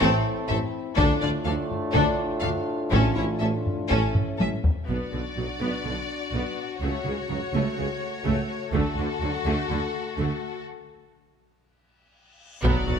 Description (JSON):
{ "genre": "cinematic, epic orchestral film score", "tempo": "124 BPM", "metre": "4/4", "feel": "straight", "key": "B minor from 4.9 s", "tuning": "A4 = 440 Hz", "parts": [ { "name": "rich symphonic violin section", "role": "melody", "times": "0.0-13.0 s", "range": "A4 to F5", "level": "-32 LUFS", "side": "left 6 dB", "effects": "none" }, { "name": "rich symphonic violin section", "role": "second line", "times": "0.0-13.0 s", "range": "B3 to A4", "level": "-32 LUFS", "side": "left 5 dB", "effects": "none" }, { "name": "rich symphonic viola section", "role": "accompaniment", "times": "0.0-13.0 s", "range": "C#3 to D4", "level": "-31 LUFS", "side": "right 1 dB", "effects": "none" }, { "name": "clear trombone section", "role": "sustained chords", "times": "0.0-4.6, 12.6-13.0 s", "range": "A2 to A3", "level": "-33 LUFS", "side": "right 4 dB", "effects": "none" }, { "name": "mellow French horn section", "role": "sustained chords", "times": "0.0-13.0 s", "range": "A3 to F#4", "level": "-34 LUFS", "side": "left 5 dB", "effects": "none" }, { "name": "rich studio double bass section", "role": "bass", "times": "0.0-13.0 s", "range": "A1 to D2", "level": "-31 LUFS", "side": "right 3 dB", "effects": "none" }, { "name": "rich symphonic cello section", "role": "bass", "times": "0.0-13.0 s", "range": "A2 to D3", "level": "-31 LUFS", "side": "right 2 dB", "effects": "none" }, { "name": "warm tuba", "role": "bass", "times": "0.0-13.0 s", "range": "A1 to D2", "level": "-33 LUFS", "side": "right 5 dB", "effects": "none" }, { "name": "taiko ensemble", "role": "drums", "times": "0.0-5.8, 8.7-9.7, 12.6-13.0 s", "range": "none", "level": "-27 LUFS", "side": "equal", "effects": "none" }, { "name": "timpani", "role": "percussion", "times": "2.9-3.6 s", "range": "A2", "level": "-34 LUFS", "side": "equal", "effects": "none" }, { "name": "reverse cymbal and impact", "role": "sound effects", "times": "12.4-13.0 s", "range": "none", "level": "-36 LUFS", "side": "left 1 dB", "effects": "none" } ], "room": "light reverb", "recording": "close, detailed microphones", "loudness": "-23 LUFS", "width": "side -7 dB against mid", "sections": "0.0-4.9 A section; 4.9-12.6 B section", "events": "drum fill 4.2-4.9, 11.9-12.6; break 10.7-12.6; reverse cymbal 12.4; impact 12.6-13.0", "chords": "0.0 Am; 1.0 Dm; 2.9 A; 4.9 Bm; 6.8 F#m/C#; 8.7 D; 10.7 N.C." }